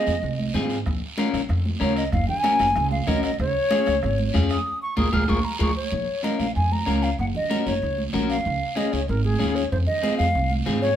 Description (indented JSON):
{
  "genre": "latin, cumbia",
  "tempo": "190 BPM",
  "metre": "4/4",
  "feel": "straight",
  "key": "Bb minor",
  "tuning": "A4 = 440 Hz",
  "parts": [
    { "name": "hollow concert flute", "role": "melody", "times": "0.0-11.0 s", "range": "Ab4 to F6", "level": "-25 LUFS", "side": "equal", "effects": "none" },
    { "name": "electric guitar at the edge of break-up", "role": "accompaniment", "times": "0.0-10.9 s", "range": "C4 to Bb4", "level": "-27 LUFS", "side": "left 5 dB", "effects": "none" },
    { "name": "upright bass", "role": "bass", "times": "0.1-10.9 s", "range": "Gb1 to Ab2", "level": "-25 LUFS", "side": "right 1 dB", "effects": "none" },
    { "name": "congas", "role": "percussion", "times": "0.1-10.8 s", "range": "none", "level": "-29 LUFS", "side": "right 3 dB", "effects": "none" },
    { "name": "guiro", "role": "percussion", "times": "0.1-11.0 s", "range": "none", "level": "-37 LUFS", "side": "right 4 dB", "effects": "none" },
    { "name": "bombo", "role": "percussion", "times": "0.9-5.7 s", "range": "none", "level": "-29 LUFS", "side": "equal", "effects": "none" }
  ],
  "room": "moderate studio reverb, RT60 0.8 s",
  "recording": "band playing live in one room",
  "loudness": "-20 LUFS",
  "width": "side -10 dB against mid",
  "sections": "0.0-5.9 A section; 5.9-11.0 B section",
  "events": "flute solo 0.0-5.9; band accent 4.7-5.9",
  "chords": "0.0 Fm7; 0.9 Bbm; 2.1 Gb; 3.4 Db; 4.7 Bb5; 5.9 Bbm; 7.2 Gb; 8.5 Dbadd9; 9.7 Fm7"
}